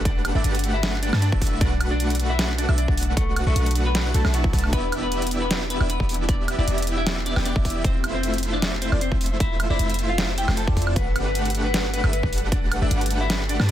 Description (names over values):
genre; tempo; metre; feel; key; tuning
future bass; 154 BPM; 4/4; half-time; unclear; A4 = 440 Hz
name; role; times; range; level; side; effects
shimmering ambient pad; sustained chords; 0.0-13.7 s; E3 to F#5; -36 LUFS; right 1 dB; chorus, built-in reverb, sidechain pumping
airy dreamy lead; arpeggios; 0.0-13.7 s; D5 to A5; -34 LUFS; equal; chorus, sidechain pumping
dense compressed supersaw; riff; 0.0-13.7 s; A3 to A5; -29 LUFS; equal; vintage 12-bit sampler grit, sidechain pumping
warm 808-style bass; bass; 0.0-13.7 s; E1 to G2; -24 LUFS; equal; sidechain pumping
semi-hollow electric guitar; melody; 0.1-13.7 s; F#3 to A5; -29 LUFS; left 3 dB; sidechain pumping, tape echo
dubstep drum kit; drums; 0.1-13.7 s; hi-hat, snare drum, woodblock; -27 LUFS; right 1 dB; overdrive
electronic kick drum; drums; 0.1-12.6 s; none; -24 LUFS; equal; overdrive
swell; sound effects; 4.1-4.7 s; none; -39 LUFS; right 5 dB; none
room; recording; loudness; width
digital ambience; dense, heavily limited modern master; -20 LUFS; side -12 dB against mid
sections
0.0-13.7 A section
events
swell 4.1-4.7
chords
0.0 Gmaj9; 4.7 Em7; 7.8 Fmaj7; 11.0 Gmaj9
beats
| 0.05 0.44 0.83 1.22 | 1.61 2.00 2.39 2.78 | 3.17 3.56 3.95 4.34 | 4.73 5.12 5.51 5.90 | 6.29 6.68 7.07 7.46 | 7.84 8.23 8.62 9.01 | 9.40 9.79 10.18 10.57 | 10.96 11.35 11.74 12.13 | 12.52 12.91 13.30 13.69